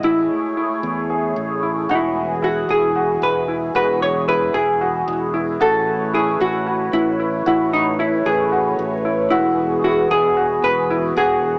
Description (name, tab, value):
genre	progressive instrumental, progressive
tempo	226 BPM (eighths)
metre	7/8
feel	straight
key	E major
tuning	A4 = 441 Hz
part	vintage hollow-body jazz guitar	melody	0.0-11.6 s	D#4 to C#5	-18 LUFS	equal	cassette tape, analog delay
part	phased analog pad	accompaniment	0.0-11.6 s	E3 to C#5	-21 LUFS	equal	phaser, chorus, cassette tape
part	bright baby grand piano	arpeggios	0.0-11.6 s	E4 to G#4	-23 LUFS	equal	cassette tape, analog delay
part	modern bright fingered electric bass	bass	0.0-11.6 s	E1 to E2	-29 LUFS	equal	none
room	wet spring reverb, RT60 1.2 s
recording	home recording on cassette, small speaker sound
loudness	-16 LUFS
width	side -34 dB against mid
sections	0.0-1.9 A section; 1.9-11.6 B section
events	none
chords	0.0 Amaj7; 1.9 Eadd9; 5.6 Aadd9; 9.3 Eadd9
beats	| 0.04 0.30 0.57 0.83 1.10 1.37 1.63 | 1.90 2.16 2.43 2.69 2.96 3.22 3.49 | 3.75 4.02 4.28 4.55 4.81 5.08 5.34 | 5.61 5.87 6.14 6.40 6.67 6.93 7.20 | 7.46 7.73 7.99 8.26 8.52 8.79 9.05 | 9.32 9.58 9.85 10.11 10.38 10.64 10.91 | 11.17 11.44